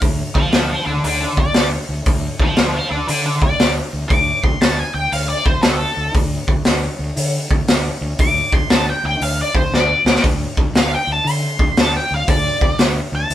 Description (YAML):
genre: blues rock power trio and southern rock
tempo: 118 BPM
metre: 4/4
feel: swing 65% on 8ths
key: D minor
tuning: A4 = 440 Hz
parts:
  - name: fuzz fingered electric bass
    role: bass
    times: 0.0-13.3 s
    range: D2 to D3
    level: -22 LUFS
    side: equal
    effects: overdrive
  - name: raw garage drum kit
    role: drums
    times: 0.0-13.3 s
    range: hi-hat, kick drum, snare drum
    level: -17 LUFS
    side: equal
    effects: none
  - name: octave-fuzz lead guitar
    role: melody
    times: 0.3-13.3 s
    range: A4 to D6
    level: -19 LUFS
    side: left 1 dB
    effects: wah, distortion
room: light reverb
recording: band playing live in one room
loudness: -15 LUFS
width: side -12 dB against mid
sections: 0.0-13.3 A section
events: lead electric guitar solo 0.0-13.3; drum fill 9.7-10.2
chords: none